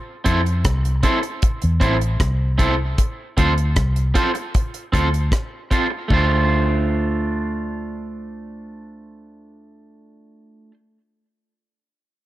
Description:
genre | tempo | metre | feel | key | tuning
roots reggae | 77 BPM | 4/4 | straight | D minor | A4 = 440 Hz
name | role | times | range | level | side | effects
electric guitar at the edge of break-up | accompaniment | 0.2-10.7 s | A3 to C5 | -22 LUFS | right 2 dB | tape echo
vintage muted fingered electric bass | bass | 0.3-10.7 s | A1 to F2 | -20 LUFS | equal | none
deep reggae drum kit | drums | 0.3-6.3 s | hi-hat, kick drum, rim click | -20 LUFS | equal | none
room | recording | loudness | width
studio reverb | none | -17 LUFS | side -15 dB against mid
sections
0.0-6.1 A section; 6.1-9.2 B section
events
none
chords
0.0 Fmaj7; 3.0 Dm7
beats
0.65 1.43 2.21 | 2.98 3.76 4.54 5.32 | 6.10 6.88 7.66 8.44

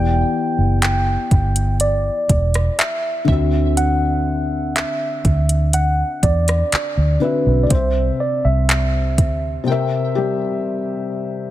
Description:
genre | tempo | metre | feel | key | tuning
contemporary R&B | 61 BPM | 4/4 | straight | unclear | A4 = 440 Hz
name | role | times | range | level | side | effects
mellow tine electric piano | melody | 0.0-11.1 s | B4 to G5 | -22 LUFS | right 2 dB | none
felt-muted upright piano | accompaniment | 0.0-11.5 s | C3 to E5 | -22 LUFS | left 4 dB | none
vintage muted fingered electric bass | bass | 0.0-9.6 s | E1 to E2 | -18 LUFS | right 1 dB | none
glassy wavetable pluck | texture | 0.0-11.5 s | D5 to A5 | -35 LUFS | right 1 dB | chorus, digital delay
smooth R&B drum kit | drums | 0.8-9.4 s | handclaps, hi-hat, kick drum, rim click | -19 LUFS | equal | none
room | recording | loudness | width
digital ambience | none | -16 LUFS | side -14 dB against mid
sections
0.0-11.5 A section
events
break 9.7-11.5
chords
0.0 Em7; 3.3 D9; 7.7 C; 9.7 C7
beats
0.82 1.80 2.79 | 3.77 4.75 5.74 6.72 | 7.71 8.69 9.67 10.66

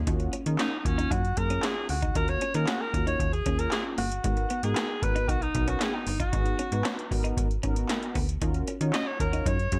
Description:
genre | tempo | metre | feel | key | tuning
early-eighties boogie funk | 115 BPM | 4/4 | straight | unclear | A4 = 437 Hz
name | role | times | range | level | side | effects
clean electric guitar | riff | 0.0-9.8 s | G#3 to D#4 | -39 LUFS | equal | lush chorus
slap-like FM bass | bass | 0.0-9.8 s | G1 to D#3 | -32 LUFS | equal | none
mellow synth brass | accompaniment | 0.1-9.8 s | A#3 to C#5 | -37 LUFS | equal | chorus
electro analog drum machine | drums | 0.1-9.8 s | handclaps, hi-hat, kick drum, snare drum | -32 LUFS | equal | gated reverb
breathy alto saxophone | melody | 0.6-9.8 s | C#4 to D#5 | -33 LUFS | equal | slapback echo
room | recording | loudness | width
little or no reverb | none | -28 LUFS | mono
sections
0.1-9.8 A section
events
alto saxophone solo 0.1-9.8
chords
0.1 D#m9; 4.2 G#m9; 8.4 D#m9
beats
| 0.07 0.59 1.11 1.64 | 2.16 2.68 3.20 3.72 | 4.24 4.76 5.29 5.81 | 6.33 6.85 7.37 7.89 | 8.42 8.94 9.46

